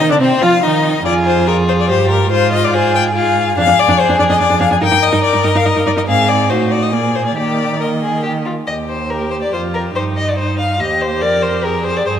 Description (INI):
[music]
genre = quick classical-period movement for string quartet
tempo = 142 BPM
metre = 3/4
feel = straight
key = Eb major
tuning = A4 = 440 Hz
[part]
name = clear violin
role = melody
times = 0.0-12.2 s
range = Eb4 to Ab5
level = -17 LUFS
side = left 8 dB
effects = none
[part]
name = rich violin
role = second line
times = 0.0-12.1 s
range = C4 to F5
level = -18 LUFS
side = left 2 dB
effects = none
[part]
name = rich viola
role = accompaniment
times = 0.0-12.2 s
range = Bb3 to Bb4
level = -19 LUFS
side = right 2 dB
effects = none
[part]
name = warm cello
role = bass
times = 0.0-12.2 s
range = Eb2 to F3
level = -18 LUFS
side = right 4 dB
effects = none
[sound]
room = wet concert hall reverb, RT60 2.5 s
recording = none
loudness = -12 LUFS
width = side -9 dB against mid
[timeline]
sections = 0.0-8.7 A section; 8.7-12.2 A section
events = none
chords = 0.0 Cmadd11; 1.1 Fm; 2.3 Fm/Ab; 3.6 Ddim/F; 4.8 Eb/G; 6.1 Fm/Ab; 6.5 Adim7; 6.9 Bb7; 7.4 Eb; 10.0 Eb/G; 11.2 Fm